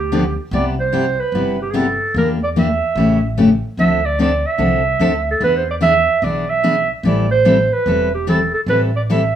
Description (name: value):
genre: acoustic string swing (jazz manouche)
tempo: 147 BPM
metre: 4/4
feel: swing 63% on 8ths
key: A minor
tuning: A4 = 440 Hz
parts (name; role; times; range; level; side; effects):
- warm clarinet; melody; 0.0-9.4 s; G4 to E5; -17 LUFS; right 4 dB; plate reverb
- upright bass; bass; 0.0-9.3 s; E1 to E2; -22 LUFS; equal; none
- picked steel-string acoustic guitar; accompaniment; 0.1-9.2 s; C3 to A4; -17 LUFS; left 2 dB; none
room: wet studio reverb, RT60 0.6 s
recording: small room ambience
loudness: -14 LUFS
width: side -10 dB against mid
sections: 0.0-9.4 A section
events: none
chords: 0.0 G7; 0.5 Cmaj7; 2.2 Em7b5; 3.0 A7; 3.8 Dm7; 5.4 E7; 7.0 Am7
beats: 0.12 | 0.53 0.93 1.34 1.74 | 2.15 2.56 2.96 3.37 | 3.78 4.19 4.59 5.00 | 5.41 5.82 6.22 6.63 | 7.04 7.45 7.86 8.27 | 8.67 9.08